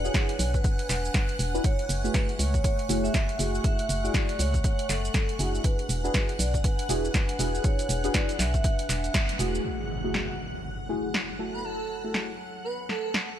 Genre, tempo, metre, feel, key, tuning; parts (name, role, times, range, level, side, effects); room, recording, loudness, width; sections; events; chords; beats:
deep house; 120 BPM; 4/4; swing 59% on 16ths; F# minor; A4 = 439 Hz
vibraphone with medium mallets; melody; 0.0-9.4 s; A4 to E5; -34 LUFS; right 2 dB; dub echo
dark analog pad; sustained chords; 0.0-13.4 s; F#3 to C#6; -39 LUFS; left 1 dB; chorus, sidechain pumping
deep mellow chord stab; stabs; 0.0-12.3 s; A3 to B4; -33 LUFS; equal; chorus, phaser, sidechain pumping, dub echo
organ-like FM bass; bass; 0.0-9.6 s; E1 to C#2; -28 LUFS; equal; sidechain pumping
punchy analog drum machine; drums; 0.0-13.3 s; hi-hat, shaker, snare drum; -31 LUFS; right 1 dB
string machine, violins; texture; 0.0-13.4 s; F#5 to F#6; -38 LUFS; equal; ensemble chorus, sidechain pumping
electronic kick drum; drums; 0.1-9.3 s; -25 LUFS; equal
impact; sound effects; 9.6-11.6 s; -36 LUFS; equal
airy dreamy lead; melody; 11.5-13.3 s; A4 to B4; -33 LUFS; right 3 dB; chorus, dub echo
digital ambience; -24 LUFS; side -11 dB against mid
0.0-9.6 A section; 9.6-13.4 B section
band accent 9.1; impact 9.6-11.6
0.0 E9; 1.6 F#m9; 5.6 E9; 9.6 F#m9
0.14 0.64 1.14 | 1.64 2.14 2.64 3.14 | 3.64 4.14 4.64 5.14 | 5.64 6.14 6.64 7.14 | 7.64 8.14 8.64 9.14 | 9.64 10.14 10.64 11.14 | 11.64 12.14 12.64 13.14